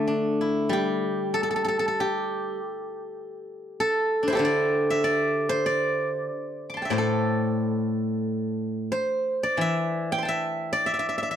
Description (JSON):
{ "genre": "chinese traditional, Chinese solo plucked strings", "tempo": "86-101 BPM", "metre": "4/4", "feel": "rubato", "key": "D shang mode", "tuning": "A4 = 440 Hz", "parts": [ { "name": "steel-string zither", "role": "solo", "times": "0.0-11.4 s", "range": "A2 to D6", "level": "-24 LUFS", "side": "equal", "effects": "none" } ], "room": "light reverb", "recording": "dry, close 1970s-style studio recording", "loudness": "-23 LUFS", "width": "side -9 dB against mid", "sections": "0.0-11.4 A section", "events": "none", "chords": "none" }